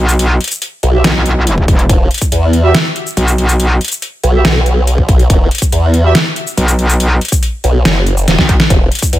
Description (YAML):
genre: heavy wobble dubstep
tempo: 141 BPM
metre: 4/4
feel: half-time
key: E minor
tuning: A4 = 440 Hz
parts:
  - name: metallic wobble bass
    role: bass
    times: 0.0-3.8, 6.6-8.6 s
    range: E1 to B1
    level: -11 LUFS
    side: equal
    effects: distortion, chorus, overdrive
  - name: dubstep drum kit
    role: drums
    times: 0.1-9.2 s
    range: hi-hat, shaker, snare drum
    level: -15 LUFS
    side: equal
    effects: overdrive
  - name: formant-sweep wobble bass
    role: bass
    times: 0.8-9.2 s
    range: E1 to E2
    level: -10 LUFS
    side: equal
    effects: chorus, overdrive
  - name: clear brass ensemble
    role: stabs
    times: 0.9-6.1 s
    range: F#4 to E5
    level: -18 LUFS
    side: right 3 dB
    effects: ping-pong delay
  - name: electronic kick drum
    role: drums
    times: 1.6-2.3, 5.0-9.1 s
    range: none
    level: -11 LUFS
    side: equal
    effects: overdrive
room: little or no reverb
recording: none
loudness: -9 LUFS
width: side -14 dB against mid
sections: 0.0-9.2 A section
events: drum fill 8.3-8.7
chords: 0.0 E5